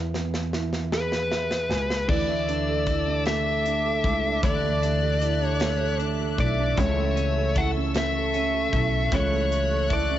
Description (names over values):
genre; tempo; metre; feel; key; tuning
six-eight pop ballad; 51 BPM (dotted quarters); 6/8; straight; unclear; A4 = 440 Hz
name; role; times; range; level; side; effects
felt-muted upright piano; accompaniment; 0.0-10.2 s; C#3 to G#5; -30 LUFS; right 9 dB; cassette tape
upright bass; bass; 0.0-10.2 s; B1 to E2; -28 LUFS; equal; none
modern studio drum kit; drums; 0.1-10.1 s; crash cymbal, hi-hat, kick drum, snare drum; -30 LUFS; equal; cassette tape
fuzz lead guitar; melody; 0.9-10.2 s; B4 to F#5; -26 LUFS; left 2 dB; distortion, cassette tape, analog delay
dark symphonic string section; sustained chords; 2.1-10.2 s; A4 to F#6; -32 LUFS; left 2 dB; cassette tape
twelve-string electric guitar; arpeggios; 2.1-10.2 s; E3 to A4; -35 LUFS; left 8 dB; cassette tape, analog delay
room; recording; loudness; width
light reverb, small room ambience; home recording on cassette, nothing above 7.7 kHz; -22 LUFS; side -12 dB against mid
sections
0.0-2.1 A section; 2.1-10.2 B section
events
drum fill 0.0-2.1; felt piano fill 0.9-2.1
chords
0.0 E; 2.1 Dsus2; 6.8 A